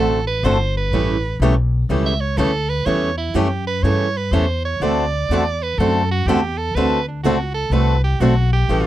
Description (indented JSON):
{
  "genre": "acoustic string swing (jazz manouche)",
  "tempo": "124 BPM",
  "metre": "4/4",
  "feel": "swing 66% on 8ths",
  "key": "unclear",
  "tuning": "A4 = 440 Hz",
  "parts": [
    { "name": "edgy soprano saxophone", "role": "second line", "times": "0.0-8.9 s", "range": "D4 to E5", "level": "-23 LUFS", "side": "right 4 dB", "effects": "none" },
    { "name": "picked steel-string acoustic guitar", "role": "accompaniment", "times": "0.0-8.9 s", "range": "D3 to A4", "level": "-22 LUFS", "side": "right 7 dB", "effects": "none" },
    { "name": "picked swing-style acoustic guitar", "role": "accompaniment", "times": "0.0-8.9 s", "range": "C#3 to A4", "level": "-21 LUFS", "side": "left 4 dB", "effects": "none" },
    { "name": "upright bass", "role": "bass", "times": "0.0-8.9 s", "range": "G1 to G2", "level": "-19 LUFS", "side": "left 1 dB", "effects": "none" }
  ],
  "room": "light reverb",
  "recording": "dry, close 1970s-style studio recording",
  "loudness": "-16 LUFS",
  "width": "side -13 dB against mid",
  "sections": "0.0-8.9 A section",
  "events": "soprano saxophone solo 0.0-8.9",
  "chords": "0.0 D7; 0.9 A7; 4.8 D7"
}